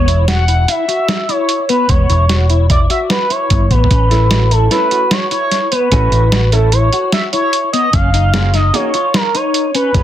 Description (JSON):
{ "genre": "progressive instrumental, band music in an uneven meter", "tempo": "149 BPM", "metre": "5/4", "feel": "straight", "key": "unclear", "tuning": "A4 = 440 Hz", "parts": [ { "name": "expressive synth lead", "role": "melody", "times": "0.0-10.0 s", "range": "A4 to F#5", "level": "-16 LUFS", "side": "right 1 dB", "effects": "chorus, ping-pong delay" }, { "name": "clean electric guitar", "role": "arpeggios", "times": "0.0-10.0 s", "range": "B3 to F#4", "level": "-21 LUFS", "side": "left 6 dB", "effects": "analog chorus, ping-pong delay" }, { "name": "hollow-body short-scale fingered electric bass", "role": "bass", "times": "0.0-10.0 s", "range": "E1 to A1", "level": "-12 LUFS", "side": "equal", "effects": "none" }, { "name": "lo-fi sampler-style drum kit", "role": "drums", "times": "0.1-10.0 s", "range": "hi-hat, kick drum, snare drum, toms", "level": "-16 LUFS", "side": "right 1 dB", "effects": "none" }, { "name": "bright concert grand piano", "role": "accompaniment", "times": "4.1-10.0 s", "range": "A#2 to A4", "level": "-22 LUFS", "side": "right 6 dB", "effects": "none" } ], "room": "light reverb", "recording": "dense, heavily limited modern master", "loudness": "-11 LUFS", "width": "side -11 dB against mid", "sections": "0.0-10.0 A section", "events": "drum fill 3.7", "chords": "0.0 Esus2; 3.9 A; 7.9 F#add9" }